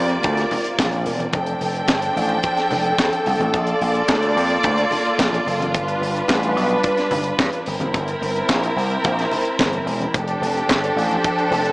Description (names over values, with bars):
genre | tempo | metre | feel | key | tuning
disco | 109 BPM | 4/4 | straight | F major | A4 = 439 Hz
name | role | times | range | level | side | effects
clear studio string section | sustained chords | 0.0-11.7 s | C3 to G5 | -20 LUFS | equal | none
vintage slap bass | bass | 0.0-11.7 s | E1 to G2 | -23 LUFS | equal | none
tight funk drum kit | drums | 0.1-11.7 s | handclaps, hi-hat, kick drum, snare drum | -23 LUFS | equal | none
congas | percussion | 0.5-11.6 s | none | -31 LUFS | left 1 dB | none
room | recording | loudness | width
light reverb, studio reverb | small speaker sound | -17 LUFS | side -24 dB against mid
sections
0.0-1.3 A section; 1.3-11.7 B section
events
none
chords
0.0 C9sus4; 1.3 F69; 3.5 Bbmaj7; 5.7 G7; 7.7 C7; 10.1 F69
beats
0.25 0.80 | 1.34 1.89 2.44 2.99 | 3.54 4.09 4.64 5.19 | 5.74 6.29 6.84 7.39 | 7.94 8.49 9.04 9.59 | 10.14 10.69 11.24